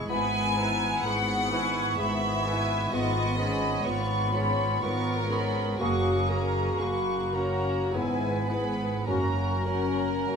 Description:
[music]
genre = classical, slow romantic movement for symphony orchestra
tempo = 48-66 BPM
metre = 3/4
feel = rubato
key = unclear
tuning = A4 = 443 Hz
[part]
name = rich studio violin section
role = melody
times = 0.0-10.4 s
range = F#5 to C#6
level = -39 LUFS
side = equal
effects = none
[part]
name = warm clarinet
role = second line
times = 0.0-10.4 s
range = E4 to F#4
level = -35 LUFS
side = equal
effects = none
[part]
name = warm bassoon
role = accompaniment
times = 0.0-10.4 s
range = A#3 to C#4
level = -34 LUFS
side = right 3 dB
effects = none
[part]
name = warm studio viola section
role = accompaniment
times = 0.0-10.4 s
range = G#3 to B4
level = -35 LUFS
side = equal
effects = none
[part]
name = concert harp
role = arpeggios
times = 0.0-10.4 s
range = F#2 to E5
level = -36 LUFS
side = left 6 dB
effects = none
[part]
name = dark chamber double bass section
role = bass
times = 0.0-10.4 s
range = F#1 to G#1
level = -33 LUFS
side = equal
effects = none
[part]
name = warm studio cello section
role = bass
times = 0.0-10.4 s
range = F#2 to G#2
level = -34 LUFS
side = right 1 dB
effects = none
[part]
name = small flute group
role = second line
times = 0.1-10.4 s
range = G#5 to D#6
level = -34 LUFS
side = equal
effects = none
[part]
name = warm studio violin section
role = second line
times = 0.1-10.4 s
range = F#4 to G#5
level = -32 LUFS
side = left 1 dB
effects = none
[part]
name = mellow French horn section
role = sustained chords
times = 0.1-9.5 s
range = A#3 to F#4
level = -35 LUFS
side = equal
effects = none
[sound]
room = wet stone room reverb, RT60 1.2 s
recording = none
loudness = -25 LUFS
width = side -6 dB against mid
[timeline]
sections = 0.0-10.4 A section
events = none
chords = 0.1 E/G#; 2.9 C#7/G#; 5.8 F#; 7.9 E/G#; 9.1 F#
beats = | 0.09 1.05 1.99 | 2.93 3.85 4.82 | 5.80 6.79 7.93 | 9.07 10.27

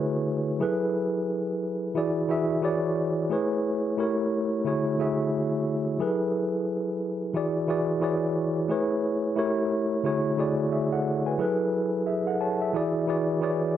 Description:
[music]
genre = R&B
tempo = 89 BPM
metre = 4/4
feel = swing 60% on 16ths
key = F# minor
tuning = A4 = 436 Hz
[part]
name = mellow tine electric piano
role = solo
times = 0.0-13.8 s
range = D3 to A5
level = -24 LUFS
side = equal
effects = medium stereo tremolo
[sound]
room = light reverb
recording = worn, warbling old tape, cassette tape, warbly pitch drift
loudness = -24 LUFS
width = side -10 dB against mid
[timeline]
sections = 0.0-13.8 A section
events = none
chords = 0.0 Dmaj9#11; 0.6 F#m11; 2.0 E9; 2.6 E13; 3.3 Amaj9; 4.0 A7b9; 4.7 Dmaj9#11; 6.0 F#m11; 7.3 E9; 8.0 E13; 8.7 Amaj9; 9.4 A7b9; 10.0 Dmaj9#11; 11.4 F#m11; 12.7 E9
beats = | 0.61 1.28 1.96 2.63 | 3.30 3.98 4.65 5.33 | 6.00 6.67 7.35 8.02 | 8.70 9.37 10.04 10.72 | 11.39 12.07 12.74 13.41

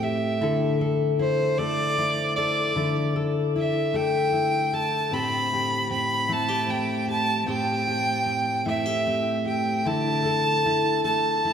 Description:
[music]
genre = acoustic folk duo or small band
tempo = 51 BPM (dotted quarters)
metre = 6/8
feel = straight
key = unclear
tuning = A4 = 440 Hz
[part]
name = clear fiddle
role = melody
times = 0.0-11.5 s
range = C5 to B5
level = -24 LUFS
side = right 2 dB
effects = none
[part]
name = fingerpicked steel-string acoustic guitar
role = accompaniment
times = 0.0-11.5 s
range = A2 to C5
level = -25 LUFS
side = left 2 dB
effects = none
[sound]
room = wet cathedral reverb, RT60 4.5 s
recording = recorded in a church or concert hall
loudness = -22 LUFS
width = side -8 dB against mid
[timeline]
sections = 0.0-11.5 A section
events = none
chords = 0.4 Dsus2; 5.1 Am7; 9.8 Dsus2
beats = | 0.40 1.58 | 2.76 3.94 | 5.12 6.30 | 7.48 8.67 | 9.85 11.03

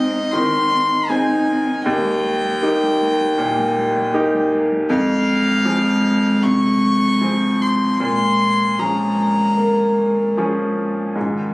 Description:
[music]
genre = neoclassical piano and strings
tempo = 77 BPM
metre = 4/4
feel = rubato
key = Bb dorian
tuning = A4 = 440 Hz
[part]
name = rich violin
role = melody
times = 0.0-10.4 s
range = Eb5 to Db6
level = -20 LUFS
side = left 1 dB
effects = none
[part]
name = dark cello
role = second line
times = 0.0-11.5 s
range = Eb3 to Eb4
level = -23 LUFS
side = equal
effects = none
[part]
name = bright upright piano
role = accompaniment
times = 0.0-11.5 s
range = Eb2 to Ab4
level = -18 LUFS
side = equal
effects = none
[sound]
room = light reverb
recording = recorded on a phone in the room, club reverb, compression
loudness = -15 LUFS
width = side -23 dB against mid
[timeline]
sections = 0.0-11.2 A section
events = none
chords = 0.0 Ab; 1.9 Eb; 4.9 Fm; 8.0 Bbm7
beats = 0.33 1.09 | 1.85 2.62 3.38 4.14 | 4.90 5.66 6.43 7.21 | 8.00 8.79 9.58 10.37 | 11.15

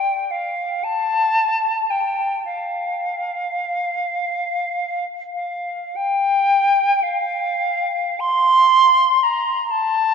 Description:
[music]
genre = classical, free, expressive piece for unaccompanied flute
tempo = 27-42 BPM (dotted quarters)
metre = 6/8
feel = rubato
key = F major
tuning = A4 = 443 Hz
[part]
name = silver concert flute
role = solo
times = 0.0-10.1 s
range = F5 to C6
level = -17 LUFS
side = equal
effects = none
[sound]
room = wet cathedral reverb, RT60 4.7 s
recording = nothing above 7.8 kHz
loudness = -17 LUFS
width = side -6 dB against mid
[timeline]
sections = 0.0-6.0 A section; 6.0-10.1 B section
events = none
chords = none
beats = 0.84 | 2.46 4.09 | 5.96 7.62 | 9.23

